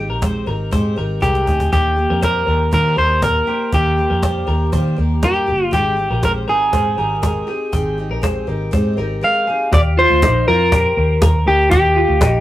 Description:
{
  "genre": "jangly indie pop",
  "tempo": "120 BPM",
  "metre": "4/4",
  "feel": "straight",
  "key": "Eb major",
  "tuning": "A4 = 440 Hz",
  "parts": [
    { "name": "picked steel-string acoustic guitar", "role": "accompaniment", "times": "0.0-9.7 s", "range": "Eb3 to G4", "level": "-25 LUFS", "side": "right 2 dB", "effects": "none" },
    { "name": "twelve-string electric guitar", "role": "arpeggios", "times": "0.0-12.4 s", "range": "Eb4 to G5", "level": "-24 LUFS", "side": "left 2 dB", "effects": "none" },
    { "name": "vintage muted picked electric bass", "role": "bass", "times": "0.0-12.4 s", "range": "G1 to Eb3", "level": "-19 LUFS", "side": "equal", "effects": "none" },
    { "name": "cajon", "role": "drums", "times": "0.2-12.3 s", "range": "none", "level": "-19 LUFS", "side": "equal", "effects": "none" },
    { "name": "electric guitar at the edge of break-up", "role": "melody", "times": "1.2-12.4 s", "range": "G4 to F5", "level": "-16 LUFS", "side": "equal", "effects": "tape echo" }
  ],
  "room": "moderate small room reverb, RT60 0.5 s",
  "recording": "rough rehearsal-room recording, warm saturation, vinyl crackle",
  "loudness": "-14 LUFS",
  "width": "side -14 dB against mid",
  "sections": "0.0-9.7 A section; 9.7-12.4 B section",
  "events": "drum fill 1.2-1.7",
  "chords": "0.0 Abmaj7; 1.7 Ebmaj7; 5.7 Abmaj7; 9.7 Ebmaj7"
}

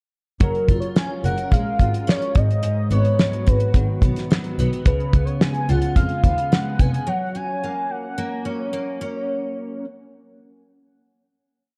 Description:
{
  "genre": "indie pop, bedroom pop",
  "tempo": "108 BPM",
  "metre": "4/4",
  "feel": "straight",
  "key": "F# major",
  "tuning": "A4 = 441 Hz",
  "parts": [
    { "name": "warm velvety synth lead", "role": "melody", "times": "0.4-8.5 s", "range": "A#4 to G#5", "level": "-29 LUFS", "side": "equal", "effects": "subtle chorus, analog delay" },
    { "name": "picked steel-string acoustic guitar", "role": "accompaniment", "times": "0.4-9.8 s", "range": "G#2 to A#4", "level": "-28 LUFS", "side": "equal", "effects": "ensemble chorus, vibrato effect" },
    { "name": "muted double bass", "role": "bass", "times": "0.4-6.9 s", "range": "E#1 to E#2", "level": "-25 LUFS", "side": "equal", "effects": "none" },
    { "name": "damped 70s drum kit", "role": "drums", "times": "0.4-7.1 s", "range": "hi-hat, kick drum, snare drum", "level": "-21 LUFS", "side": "equal", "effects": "none" }
  ],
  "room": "light reverb, small room ambience",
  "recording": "dark, warm production",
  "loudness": "-21 LUFS",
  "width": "mono",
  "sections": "0.4-9.3 A section",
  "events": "none",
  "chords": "0.4 F#maj9; 2.4 G#m7; 4.9 C#7; 7.1 F#"
}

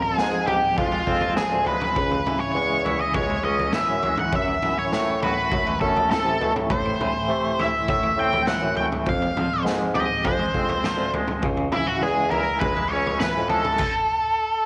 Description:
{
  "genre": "psychedelic rock",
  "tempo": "101 BPM",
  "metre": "4/4",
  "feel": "straight",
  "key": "unclear",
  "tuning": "A4 = 440 Hz",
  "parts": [
    { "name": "octave-fuzz lead guitar", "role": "melody", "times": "0.0-14.7 s", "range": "E4 to G5", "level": "-26 LUFS", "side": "equal", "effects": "wah, distortion, tape echo" },
    { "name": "twangy electric guitar", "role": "riff", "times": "0.0-13.8 s", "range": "F2 to G4", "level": "-29 LUFS", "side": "equal", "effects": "tremolo" },
    { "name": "warm bassoon", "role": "bass", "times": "0.2-13.6 s", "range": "C#2 to C3", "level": "-30 LUFS", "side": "equal", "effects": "none" },
    { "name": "raw garage drum kit", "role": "drums", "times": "0.2-13.9 s", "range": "crash cymbal, kick drum, snare drum, toms", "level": "-30 LUFS", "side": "equal", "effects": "none" }
  ],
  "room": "moderate echo chamber reverb, RT60 2.2 s",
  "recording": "none",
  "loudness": "-23 LUFS",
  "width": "mono",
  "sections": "0.0-14.7 A section",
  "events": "none",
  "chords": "0.0 Fmadd9; 2.0 C#m; 4.3 F#m7; 6.7 Am; 9.1 Fmadd9; 11.4 C#m; 13.8 N.C."
}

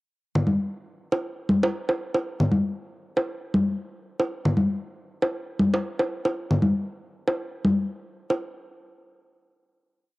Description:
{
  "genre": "house",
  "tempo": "117 BPM",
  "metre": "4/4",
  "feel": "swing 55% on 16ths",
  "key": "none",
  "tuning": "none",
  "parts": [
    { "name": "congas and bongos", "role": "percussion", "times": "0.3-8.4 s", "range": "none", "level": "-22 LUFS", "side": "equal", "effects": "overdrive, cassette tape" }
  ],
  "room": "light reverb",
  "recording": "home recording on cassette",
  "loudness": "-23 LUFS",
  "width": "side -20 dB against mid",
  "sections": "0.2-8.4 drop; 8.4-10.2 final hit",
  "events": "drop 0.2-8.4",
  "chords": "none"
}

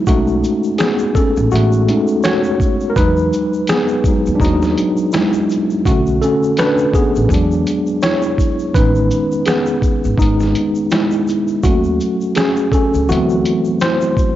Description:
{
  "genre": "lo-fi hip hop",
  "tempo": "83 BPM",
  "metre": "4/4",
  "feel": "swing 58% on 16ths",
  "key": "unclear",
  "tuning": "A4 = 439 Hz",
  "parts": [
    { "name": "tine electric piano", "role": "accompaniment", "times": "0.0-14.4 s", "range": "D3 to C#5", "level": "-15 LUFS", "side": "equal", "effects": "overdrive, fast stereo tremolo, cassette tape, low-pass filter" },
    { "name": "upright bass", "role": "bass", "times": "0.1-13.4 s", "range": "G#1 to E2", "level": "-18 LUFS", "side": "equal", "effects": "none" },
    { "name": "lo-fi sampler-style drum kit", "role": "drums", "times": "0.1-14.4 s", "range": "finger snaps, hi-hat, kick drum, shaker, snare drum", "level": "-18 LUFS", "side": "equal", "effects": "cassette tape" },
    { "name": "egg shaker", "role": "percussion", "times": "0.1-14.4 s", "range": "none", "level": "-41 LUFS", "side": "left 6 dB", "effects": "none" }
  ],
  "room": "light reverb, digital ambience",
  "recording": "home recording on cassette, nothing above 7.5 kHz",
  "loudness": "-13 LUFS",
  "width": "side -13 dB against mid",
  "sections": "0.0-14.4 A section",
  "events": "tine electric piano solo 0.0-14.4",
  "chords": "0.1 B13; 3.0 Emaj9; 5.9 Bm9; 7.3 E9; 8.7 Amaj9#11 (rootless); 11.6 D#m7b5; 13.1 D13"
}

